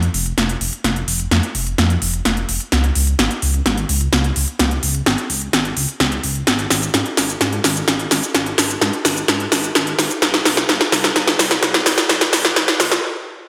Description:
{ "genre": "EDM, festival progressive house", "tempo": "128 BPM", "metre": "4/4", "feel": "straight", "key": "unclear", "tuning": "A4 = 435 Hz", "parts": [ { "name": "detuned saw bass", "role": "bass", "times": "0.0-13.0 s", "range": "F1 to Ab2", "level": "-24 LUFS", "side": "equal", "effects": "chorus" }, { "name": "big-room dance drum kit", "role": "drums", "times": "0.0-13.0 s", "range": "hi-hat, shaker, snare drum", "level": "-18 LUFS", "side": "equal", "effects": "none" } ], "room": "moderate lush hall reverb, RT60 1.8 s", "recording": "high-pass filter", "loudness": "-17 LUFS", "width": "mono", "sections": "0.0-13.5 A section", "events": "build-up 0.0-13.5; drum fill 0.0-13.0; filter sweep 0.0-13.5; stop 13.0-13.5", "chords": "none" }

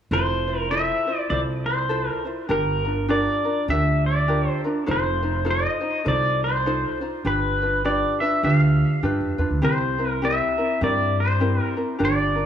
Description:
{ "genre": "Hawaiian", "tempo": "101 BPM", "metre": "4/4", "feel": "swing 60% on 8ths", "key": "F major", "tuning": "A4 = 440 Hz", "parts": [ { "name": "pedal steel guitar", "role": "melody", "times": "0.1-12.5 s", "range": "Bb4 to F5", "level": "-23 LUFS", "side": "equal", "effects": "analog delay" }, { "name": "ukulele", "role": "accompaniment", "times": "0.1-12.5 s", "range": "C4 to C5", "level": "-26 LUFS", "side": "equal", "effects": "none" }, { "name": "upright bass", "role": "bass", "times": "0.1-12.5 s", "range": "F1 to G2", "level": "-24 LUFS", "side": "right 1 dB", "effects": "none" } ], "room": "light reverb, small room ambience", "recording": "small room reverb", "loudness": "-20 LUFS", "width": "side -9 dB against mid", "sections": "0.1-12.5 A section", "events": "none", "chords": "0.1 Fmaj7; 2.5 Gm7; 4.9 F7; 7.2 G7; 9.6 C7" }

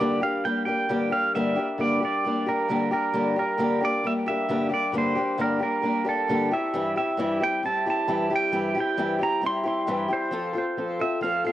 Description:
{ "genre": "rock", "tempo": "134 BPM", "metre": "4/4", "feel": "straight", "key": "G dorian", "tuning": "A4 = 439 Hz", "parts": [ { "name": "pedal steel guitar", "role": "melody", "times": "0.0-11.5 s", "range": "A4 to C6", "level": "-26 LUFS", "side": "right 4 dB", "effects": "cassette tape, analog delay" }, { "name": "picked old ladder-braced acoustic guitar", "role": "accompaniment", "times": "0.0-11.5 s", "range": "G2 to A4", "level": "-25 LUFS", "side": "left 2 dB", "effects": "none" } ], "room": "light reverb, small room ambience", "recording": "home recording on cassette", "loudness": "-22 LUFS", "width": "side -13 dB against mid", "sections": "0.0-11.5 A section", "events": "none", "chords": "0.0 Gm; 6.5 C/G; 10.3 F" }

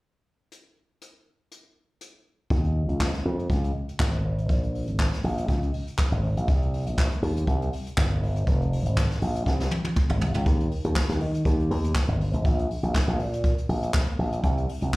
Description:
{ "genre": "disco", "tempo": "121 BPM", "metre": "4/4", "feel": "straight", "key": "unclear", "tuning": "A4 = 441 Hz", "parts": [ { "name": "jazz brush drum kit", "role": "drums", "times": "0.5-15.0 s", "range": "handclaps, hi-hat, kick drum, snare drum, toms", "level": "-25 LUFS", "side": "equal", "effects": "none" }, { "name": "slap bass with an envelope filter", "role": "bass", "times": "2.5-14.9 s", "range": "F1 to Eb3", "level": "-25 LUFS", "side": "equal", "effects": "none" } ], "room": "little or no reverb", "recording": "live gig heard through the venue's PA, club reverb", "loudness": "-23 LUFS", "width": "side -21 dB against mid", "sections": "0.5-2.5 A section; 2.5-10.5 B section; 10.5-15.0 C section", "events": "drum fill 9.5-10.5", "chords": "none" }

